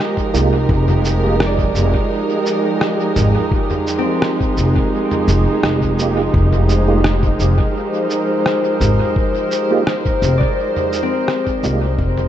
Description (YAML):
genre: ambient dub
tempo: 85 BPM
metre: 4/4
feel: straight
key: F dorian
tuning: A4 = 438 Hz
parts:
  - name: dark studio string section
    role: sustained chords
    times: 0.0-12.3 s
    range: F3 to C5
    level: -18 LUFS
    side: right 1 dB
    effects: none
  - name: electronic kick drum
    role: drums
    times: 0.2-12.1 s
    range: none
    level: -20 LUFS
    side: equal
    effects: none
  - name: tonewheel organ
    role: stabs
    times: 0.3-1.4, 6.0-11.9 s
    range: Ab3 to G4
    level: -24 LUFS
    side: right 4 dB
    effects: none
  - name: upright bass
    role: bass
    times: 0.3-12.3 s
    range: F1 to C2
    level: -16 LUFS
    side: left 1 dB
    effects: tube saturation
  - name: lo-fi sampler-style drum kit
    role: drums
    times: 0.3-12.3 s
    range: rim click, shaker, toms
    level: -23 LUFS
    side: equal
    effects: dub echo
  - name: concert harp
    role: arpeggios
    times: 1.5-12.3 s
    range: C4 to D5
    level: -26 LUFS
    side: left 2 dB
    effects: dub echo
  - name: drifting glass-harmonics texture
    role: texture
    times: 7.3-12.3 s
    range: Bb4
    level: -27 LUFS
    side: right 3 dB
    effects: chorus, built-in reverb
room: light reverb, digital ambience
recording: nothing above 8.0 kHz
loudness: -14 LUFS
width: side -11 dB against mid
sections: 0.0-12.3 A section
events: fade-out 10.1-12.3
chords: 0.0 Fm11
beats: | 0.69 1.40 2.11 2.81 | 3.52 4.22 4.93 5.64 | 6.34 7.05 7.75 8.46 | 9.17 9.87 10.58 11.28 | 11.99